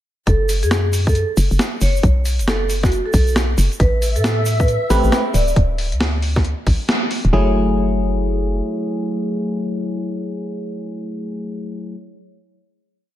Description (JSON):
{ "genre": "UK garage, two-step garage", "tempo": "136 BPM", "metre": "4/4", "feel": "swing 63% on 16ths", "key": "F# minor", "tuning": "A4 = 439 Hz", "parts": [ { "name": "vibraphone with medium mallets", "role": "melody", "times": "0.3-12.0 s", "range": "F#4 to D5", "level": "-26 LUFS", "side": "equal", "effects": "tape echo" }, { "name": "hollow knocking FM bass", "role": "bass", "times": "0.3-8.6 s", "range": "D1 to A2", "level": "-18 LUFS", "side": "equal", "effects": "none" }, { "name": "breakbeat sampler-style drum kit", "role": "drums", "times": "0.3-7.3 s", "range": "hi-hat, snare drum", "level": "-22 LUFS", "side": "equal", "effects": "none" }, { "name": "electronic kick drum", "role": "drums", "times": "0.3-6.8 s", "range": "none", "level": "-17 LUFS", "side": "equal", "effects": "none" }, { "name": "tube shaker", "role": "percussion", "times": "0.3-5.5 s", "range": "none", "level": "-32 LUFS", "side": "right 3 dB", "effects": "none" }, { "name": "soft string machine", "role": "sustained chords", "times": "3.8-5.6 s", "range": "E5", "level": "-28 LUFS", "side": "left 1 dB", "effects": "ensemble chorus, sidechain pumping" }, { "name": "FM electric piano", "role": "stabs", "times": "4.9-12.0 s", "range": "F#3 to B4", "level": "-21 LUFS", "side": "equal", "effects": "chorus, diffuse ambient delay" } ], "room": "light reverb", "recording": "none", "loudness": "-16 LUFS", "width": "side -13 dB against mid", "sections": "0.3-7.3 groove; 7.3-10.9 final chord", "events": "band accent 6.9", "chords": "0.3 F#m; 2.0 B5; 3.8 Am9; 5.3 Dsus2; 7.3 F#m9" }